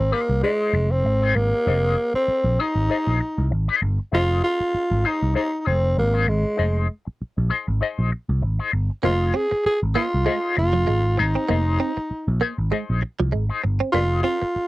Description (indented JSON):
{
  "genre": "funk",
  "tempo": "98 BPM",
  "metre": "4/4",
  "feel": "swing 56% on 16ths",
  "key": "F minor",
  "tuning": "A4 = 445 Hz",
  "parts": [
    { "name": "growling tenor saxophone", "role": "melody", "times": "0.0-14.7 s", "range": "Ab3 to Ab4", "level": "-22 LUFS", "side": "equal", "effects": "none" },
    { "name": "electric guitar with an envelope filter", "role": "accompaniment", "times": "0.0-14.4 s", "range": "Eb4 to Eb5", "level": "-25 LUFS", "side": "left 6 dB", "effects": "wah, tremolo" },
    { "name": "picked electric bass", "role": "bass", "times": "0.0-14.6 s", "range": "F1 to C2", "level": "-21 LUFS", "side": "equal", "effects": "none" },
    { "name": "direct-recorded clean electric guitar", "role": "riff", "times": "9.0-14.4 s", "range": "F3 to C4", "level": "-26 LUFS", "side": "right 5 dB", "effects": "analog chorus" }
  ],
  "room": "little or no reverb",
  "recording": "dry, close 1970s-style studio recording",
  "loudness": "-19 LUFS",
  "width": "side -18 dB against mid",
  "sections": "0.0-14.7 A section",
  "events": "none",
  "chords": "0.0 Fm7"
}